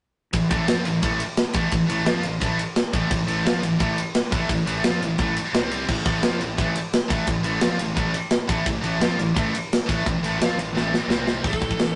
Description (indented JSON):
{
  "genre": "heavy metal",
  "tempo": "173 BPM",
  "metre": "4/4",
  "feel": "straight",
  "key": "A minor",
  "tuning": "A4 = 441 Hz",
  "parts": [
    { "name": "biting overdriven guitar", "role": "riff", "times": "0.3-11.4 s", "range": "A2 to F4", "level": "-33 LUFS", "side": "equal", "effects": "none" },
    { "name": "heavy high-gain guitar", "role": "riff", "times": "0.3-11.9 s", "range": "A2 to F4", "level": "-32 LUFS", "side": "equal", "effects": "distortion" },
    { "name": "high-gain distorted guitar", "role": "riff", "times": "0.3-12.0 s", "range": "A2 to F4", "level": "-30 LUFS", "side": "equal", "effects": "distortion" },
    { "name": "fuzz fingered electric bass", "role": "bass", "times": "0.3-11.9 s", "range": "A1 to F2", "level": "-31 LUFS", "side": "equal", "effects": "overdrive" },
    { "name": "tight metal drum kit", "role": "drums", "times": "0.3-11.9 s", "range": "crash cymbal, hi-hat, kick drum, ride cymbal, snare drum", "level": "-26 LUFS", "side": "equal", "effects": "none" },
    { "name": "high-gain lead guitar", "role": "melody", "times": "11.5-12.0 s", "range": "A4", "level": "-30 LUFS", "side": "equal", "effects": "distortion" }
  ],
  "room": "moderate stone room reverb, RT60 0.9 s",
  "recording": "rough rehearsal-room recording, tube saturation, nothing above 10.4 kHz",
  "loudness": "-23 LUFS",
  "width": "mono",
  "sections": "0.3-11.4 A section",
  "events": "drum fill 10.7-11.4",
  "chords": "0.3 Am; 5.5 C5; 5.9 Am; 11.1 C5; 11.4 A5",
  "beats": "| 0.34 0.68 1.03 1.38 | 1.72 2.07 2.42 2.77 | 3.11 3.46 3.81 4.15 | 4.50 4.84 5.19 5.54 | 5.88 6.23 6.58 6.92 | 7.27 7.62 7.97 8.31 | 8.66 9.01 9.35 9.70 | 10.05 10.40 10.74 11.09 | 11.44 11.79"
}